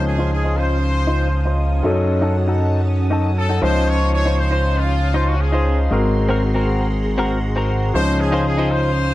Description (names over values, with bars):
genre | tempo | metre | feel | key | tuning
nu-disco | 118 BPM | 4/4 | straight | Db major | A4 = 440 Hz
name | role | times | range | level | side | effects
brilliant trumpet section | melody | 0.0-9.1 s | F4 to Db5 | -24 LUFS | left 1 dB | tape echo
clear grand piano | accompaniment | 0.0-9.1 s | F3 to C5 | -23 LUFS | left 2 dB | low-pass filter
string machine, full ensemble | sustained chords | 0.0-9.1 s | Db4 to Eb6 | -29 LUFS | equal | ensemble chorus
fat analog bass | bass | 0.0-9.1 s | Ab1 to Gb2 | -18 LUFS | equal | none
direct-recorded clean electric guitar | riff | 0.2-8.9 s | C4 to C5 | -24 LUFS | left 1 dB | analog chorus, low-pass filter
room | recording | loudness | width
studio ambience | dry, gritty hardware recording | -16 LUFS | side -16 dB against mid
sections
0.0-9.1 A section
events
filter sweep on clean electric guitar 0.0-9.1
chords
0.0 Dbmaj9; 1.8 Gbm6; 3.6 Dbmaj9; 5.9 Ab9; 7.9 Dbmaj9